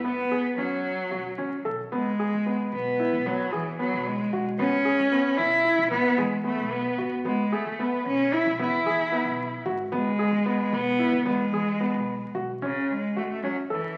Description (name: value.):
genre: contemporary instrumental, chamber music in an uneven meter.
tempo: 224 BPM (eighths).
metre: 5/8.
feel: straight.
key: F# minor.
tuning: A4 = 440 Hz.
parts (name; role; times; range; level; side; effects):
rich cello; melody; 0.0-14.0 s; C#3 to E4; -27 LUFS; equal; none.
warm concert grand piano; arpeggios; 0.0-13.9 s; B3 to A4; -32 LUFS; equal; none.
upright bass; bass; 0.0-13.8 s; E1 to E3; -43 LUFS; equal; none.
room: wet recital hall reverb, RT60 1.4 s.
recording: very old 78 rpm record, vinyl crackle.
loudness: -26 LUFS.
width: mono.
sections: 0.0-1.9 A section; 1.9-12.6 B section; 12.6-14.0 A section.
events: none.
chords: 0.0 E/F# (rootless); 0.6 F#5; 1.9 C#7(no3); 3.3 E; 4.6 C#m7; 5.9 E; 7.3 C#7(no3); 8.6 E; 9.9 C#7(no3); 11.3 E; 12.6 F#5.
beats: 0.05 0.32 | 0.58 0.85 1.12 1.38 1.65 | 1.92 2.19 2.46 2.73 3.00 | 3.26 3.53 3.80 4.06 4.33 | 4.59 4.86 5.12 5.38 5.65 | 5.91 6.18 6.45 6.72 6.99 | 7.26 7.53 7.79 8.06 8.33 | 8.59 8.86 9.13 9.39 9.66 | 9.93 10.19 10.46 10.73 10.99 | 11.26 11.53 11.80 12.07 12.35 | 12.62 12.89 13.16 13.43 13.70 | 13.97.